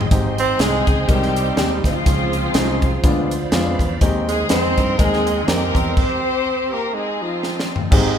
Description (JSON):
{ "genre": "uptempo gospel", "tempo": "123 BPM", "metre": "4/4", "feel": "swing 56% on 8ths", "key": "Ab major", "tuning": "A4 = 438 Hz", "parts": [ { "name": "bright tonewheel organ", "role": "sustained chords", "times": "0.0-8.2 s", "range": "Ab3 to C6", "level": "-29 LUFS", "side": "right 4 dB", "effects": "slow rotary speaker, overdrive, chorus vibrato" }, { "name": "fingered electric bass", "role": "bass", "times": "0.0-8.2 s", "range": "Ab1 to G2", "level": "-24 LUFS", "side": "equal", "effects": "none" }, { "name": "crisp fusion drum kit", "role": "drums", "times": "0.0-8.0 s", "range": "crash cymbal, hi-hat, kick drum, snare drum, toms", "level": "-19 LUFS", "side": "equal", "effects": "none" }, { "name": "warm concert grand piano", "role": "accompaniment", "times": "0.1-8.2 s", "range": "Ab2 to Bb4", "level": "-24 LUFS", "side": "left 1 dB", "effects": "none" }, { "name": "warm French horn section", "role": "sustained chords", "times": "0.1-5.9 s", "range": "B2 to F4", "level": "-33 LUFS", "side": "right 4 dB", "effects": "none" }, { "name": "breathy tenor saxophone", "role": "melody", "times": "0.4-7.7 s", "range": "F3 to C4", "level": "-24 LUFS", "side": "right 3 dB", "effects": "none" }, { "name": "rich studio string section", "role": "melody", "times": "0.4-7.9 s", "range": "Ab3 to C5", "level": "-23 LUFS", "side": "left 4 dB", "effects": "none" } ], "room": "moderate concert hall reverb, RT60 2.4 s", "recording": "recorded in a church or concert hall", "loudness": "-16 LUFS", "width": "side -8 dB against mid", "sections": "0.1-7.9 A section", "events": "stop 6.0-7.9; drum fill 7.4-7.9", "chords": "0.1 Abmaj7; 2.1 Dbmaj7; 3.0 Ddim7; 4.0 Abmaj7/Eb; 6.0 N.C.; 6.9 Fm7", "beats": "| 0.11 0.60 1.08 1.57 | 2.06 2.55 3.04 3.52 | 4.01 4.50 4.99 5.48 | 5.97 6.46 6.95 7.43 | 7.92" }